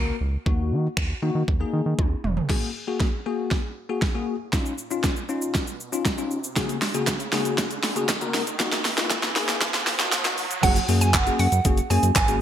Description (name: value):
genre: dance-pop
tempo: 118 BPM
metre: 4/4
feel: straight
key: F# major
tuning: A4 = 440 Hz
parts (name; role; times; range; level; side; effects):
- bell-like tine electric piano; accompaniment; 0.0-12.4 s; C#3 to A#4; -28 LUFS; left 5 dB; analog chorus, sidechain pumping
- round analog bass; bass; 0.0-2.4, 10.6-12.4 s; E#1 to D#3; -24 LUFS; right 1 dB; sidechain pumping
- pop drum kit; drums; 0.5-12.4 s; crash cymbal, finger snaps, handclaps, hi-hat, kick drum, shaker, snare drum, toms; -24 LUFS; right 1 dB; overdrive, gated reverb
- riser; sound effects; 4.4-10.6 s; none; -33 LUFS; right 3 dB; none
- group handclap; percussion; 7.1-12.3 s; none; -34 LUFS; right 11 dB; none
- hollow square pluck; melody; 10.6-12.2 s; F#5 to G#5; -24 LUFS; right 4 dB; chorus, sidechain pumping
room: light reverb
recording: bright 1980s-style digital production, high-pass filter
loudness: -21 LUFS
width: side -10 dB against mid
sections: 0.0-2.5 A section; 2.5-10.6 B section; 10.6-12.4 C section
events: drum fill 2.0-2.5, 2.5-10.6; build-up 2.5-10.6; filter sweep 2.5-10.6; riser 4.4-10.6; drop 10.6-12.4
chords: 0.5 D#m; 2.5 F#add9; 4.5 C#add9; 6.6 F#add9/C#; 8.6 D#m; 10.6 F#add9